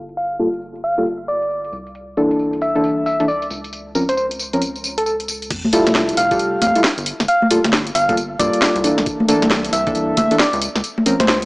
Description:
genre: UK garage, two-step garage.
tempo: 135 BPM.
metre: 4/4.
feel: swing 62% on 16ths.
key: F major.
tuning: A4 = 439 Hz.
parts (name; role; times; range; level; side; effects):
rubbery square bass; bass; 0.0-11.5 s; F1 to G2; -30 LUFS; equal; none.
garage drum kit; drums; 0.1-11.5 s; congas, crash cymbal, hi-hat, snare drum, tambourine; -19 LUFS; equal; none.
soft struck synth lead; melody; 0.2-11.4 s; A4 to F5; -20 LUFS; equal; chorus, analog delay.
deep mellow chord stab; stabs; 0.4-11.1 s; E3 to Bb4; -19 LUFS; equal; chorus.
electronic kick drum; drums; 5.5-10.3 s; none; -29 LUFS; equal; none.
sub drop; sound effects; 5.5-7.3 s; none; -40 LUFS; equal; none.
room: light reverb, digital ambience.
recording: dry, gritty hardware recording, low-pass filter, small speaker sound.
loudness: -15 LUFS.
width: side -24 dB against mid.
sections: 0.0-5.5 A section; 5.5-11.5 B section.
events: filter sweep 0.0-5.5; drop 5.5-11.5; impact 5.5-7.3.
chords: 0.0 Gm9; 1.7 C13; 3.5 Bbmadd9/Db; 5.5 Fmaj9; 7.1 Gm9; 8.8 C13; 10.6 Bbmadd9/Db.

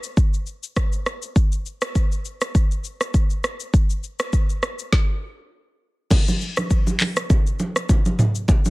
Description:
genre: afrobeats.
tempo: 101 BPM.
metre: 4/4.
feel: swing 55% on 16ths.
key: none.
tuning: none.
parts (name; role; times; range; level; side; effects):
afro-pop drum kit; drums; 0.0-8.7 s; crash cymbal, handclaps, hi-hat, kick drum, rim click, shaker, snare drum, toms; -19 LUFS; equal; vintage 12-bit sampler grit, soft clipping on snare.
congas; percussion; 6.1-8.7 s; none; -26 LUFS; right 1 dB; none.
room: digital ambience.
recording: dense, heavily limited modern master.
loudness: -19 LUFS.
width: side -22 dB against mid.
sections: 0.0-6.1 A section; 6.1-8.7 B section.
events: stop 4.9-6.1.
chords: none.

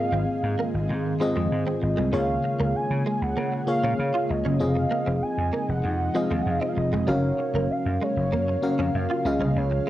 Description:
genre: pop.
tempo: 97 BPM.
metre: 4/4.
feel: straight.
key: Db major.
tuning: A4 = 440 Hz.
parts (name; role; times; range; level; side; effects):
warm velvety synth lead; melody; 0.0-9.9 s; Db5 to Ab5; -29 LUFS; right 2 dB; chorus, cassette tape.
FM electric piano; accompaniment; 0.0-9.9 s; Ab2 to F5; -27 LUFS; left 2 dB; chorus, plate reverb.
ethereal airy pad; sustained chords; 0.0-9.9 s; C3 to F5; -32 LUFS; equal; ensemble chorus, built-in reverb, tremolo.
direct-recorded clean electric guitar; riff; 0.0-9.9 s; Gb3 to F4; -31 LUFS; right 3 dB; ensemble chorus.
vintage slap bass; bass; 0.1-9.8 s; F1 to Db3; -27 LUFS; equal; none.
room: moderate studio reverb, RT60 0.6 s.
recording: home recording on cassette.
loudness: -22 LUFS.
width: side -14 dB against mid.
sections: 0.0-9.9 A section.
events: none.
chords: 0.0 Ab6; 2.1 Db6; 4.6 Fm7; 7.1 Gbmaj7; 9.2 Db.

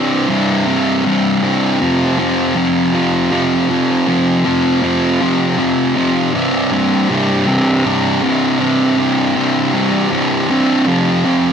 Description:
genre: rock.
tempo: 53 BPM (dotted quarters).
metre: 6/8.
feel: straight.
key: unclear.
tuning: A4 = 440 Hz.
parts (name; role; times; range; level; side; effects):
fuzz guitar; solo; 0.0-11.5 s; C2 to F3; -12 LUFS; equal; distortion.
room: moderate plate reverb, RT60 2.8 s.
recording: dark, warm production.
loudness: -12 LUFS.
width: side -7 dB against mid.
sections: 0.0-11.5 A section.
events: none.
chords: 0.0 C5; 1.8 F5; 6.3 C5; 10.9 F5.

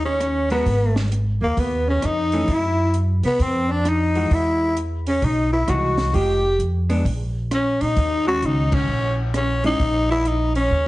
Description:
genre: jazz, small-group swing and bop.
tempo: 131 BPM.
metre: 4/4.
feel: swing 65% on 8ths.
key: Eb minor.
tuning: A4 = 439 Hz.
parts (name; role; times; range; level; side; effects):
growling tenor saxophone; melody; 0.0-10.9 s; Bb3 to G4; -22 LUFS; left 2 dB; plate reverb.
upright bass; bass; 0.0-10.9 s; F1 to C3; -22 LUFS; equal; none.
clear alto saxophone; second line; 0.1-10.9 s; Bb3 to G4; -27 LUFS; right 2 dB; none.
compact cocktail drum kit; drums; 0.2-10.6 s; hi-hat, kick drum, ride cymbal, rim click, snare drum; -28 LUFS; right 1 dB; none.
vintage hollow-body jazz guitar; accompaniment; 0.5-9.8 s; Eb3 to Bb4; -26 LUFS; equal; none.
room: moderate large studio reverb, RT60 0.7 s.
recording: heavily compressed radio sound, multiband compression, nothing above 10.3 kHz.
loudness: -18 LUFS.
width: side -18 dB against mid.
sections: 0.0-10.9 A section.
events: band accent 8.7; drum fill 10.7.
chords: 0.0 Eb5; 0.7 Abm; 2.5 Cmaj7#11/F#; 3.4 Fm7; 4.3 Emaj9; 6.1 Fm9; 7.1 Bbmadd11; 8.0 Ebm7; 9.8 Bbmadd11.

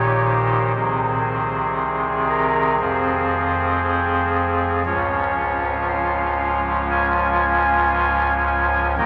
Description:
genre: classical, chorale-style piece for pipe organ.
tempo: 58 BPM.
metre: 4/4.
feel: rubato.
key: unclear.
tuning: A4 = 440 Hz.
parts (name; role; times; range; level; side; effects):
pipe organ, soft reed; solo; 0.0-9.1 s; Db1 to Ab5; -20 LUFS; equal; none.
room: wet cathedral reverb, RT60 4.7 s.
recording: none.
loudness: -20 LUFS.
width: mono.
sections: 0.0-9.1 A section.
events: none.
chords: 0.0 Eb7/Bb; 0.8 Ab/C; 2.8 Fm; 4.9 Db.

